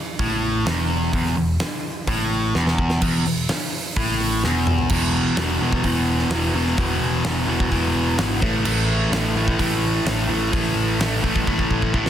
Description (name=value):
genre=hard rock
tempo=128 BPM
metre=4/4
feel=straight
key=unclear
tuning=A4 = 442 Hz
part: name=overdriven electric guitar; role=riff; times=0.2-12.1 s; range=E2 to A3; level=-21 LUFS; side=equal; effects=none
part: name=overdriven picked electric bass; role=bass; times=0.2-12.1 s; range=E1 to A1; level=-25 LUFS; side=equal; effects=none
part: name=huge arena drum kit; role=drums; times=0.2-12.1 s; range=crash cymbal, hi-hat, kick drum, snare drum, toms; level=-24 LUFS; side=equal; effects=none
room=small room ambience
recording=dense, heavily limited modern master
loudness=-18 LUFS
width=side -10 dB against mid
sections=0.0-3.0 A section; 3.0-4.9 B section; 4.9-12.1 C section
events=drum fill 2.5-3.0, 4.4-4.9, 11.5-12.1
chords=0.0 Esus4; 4.9 E5; 8.4 A5